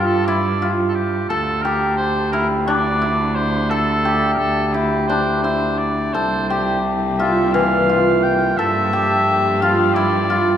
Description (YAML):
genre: contemporary instrumental, chamber music in an uneven meter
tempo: 174 BPM (eighths)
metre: 7/8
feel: straight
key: G dorian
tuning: A4 = 440 Hz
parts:
  - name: warm oboe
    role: melody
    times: 0.0-10.6 s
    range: G4 to G5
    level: -21 LUFS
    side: right 1 dB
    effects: none
  - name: cimbalom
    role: arpeggios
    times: 0.0-10.6 s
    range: E3 to A5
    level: -18 LUFS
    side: left 1 dB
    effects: none
  - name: warm cello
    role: bass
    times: 0.0-10.6 s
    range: C2 to G2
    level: -22 LUFS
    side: right 2 dB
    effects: none
  - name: dark studio string section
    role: sustained chords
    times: 6.1-10.6 s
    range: C3 to G4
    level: -28 LUFS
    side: left 4 dB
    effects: none
room: moderate concert hall reverb, RT60 2.4 s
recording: none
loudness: -16 LUFS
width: side -9 dB against mid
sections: 0.0-10.6 A section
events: none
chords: 0.0 G7(no3); 1.3 Dsus24; 6.1 C7sus4; 8.6 Gm7